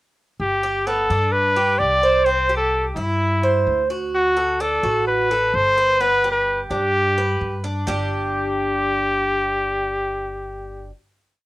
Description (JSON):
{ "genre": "latin, Cuban son and guajira", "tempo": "128 BPM", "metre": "4/4", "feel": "straight", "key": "G major", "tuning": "A4 = 439 Hz", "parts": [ { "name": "warm trumpet", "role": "melody", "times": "0.4-10.9 s", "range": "E4 to D5", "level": "-19 LUFS", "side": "left 1 dB", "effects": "cassette tape" }, { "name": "upright bass", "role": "bass", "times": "0.4-10.9 s", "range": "G1 to G2", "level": "-27 LUFS", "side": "equal", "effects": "none" }, { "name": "Cuban tres", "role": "arpeggios", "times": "0.6-10.9 s", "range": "G3 to C5", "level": "-24 LUFS", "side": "right 2 dB", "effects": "cassette tape" } ], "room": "moderate studio reverb, RT60 0.5 s", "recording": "home recording on cassette", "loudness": "-17 LUFS", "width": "side -18 dB against mid", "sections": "0.4-7.9 A section; 7.9-11.5 final chord", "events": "none", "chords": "0.4 G; 2.3 C; 4.1 D; 6.0 G; 7.9 G5", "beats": "| 0.40 0.86 1.33 1.80 | 2.27 2.73 3.20 3.67 | 4.13 4.60 5.07 5.54 | 6.00 6.47 6.94 7.41 | 7.87 8.34 8.81 9.27 | 9.74 10.21 10.67" }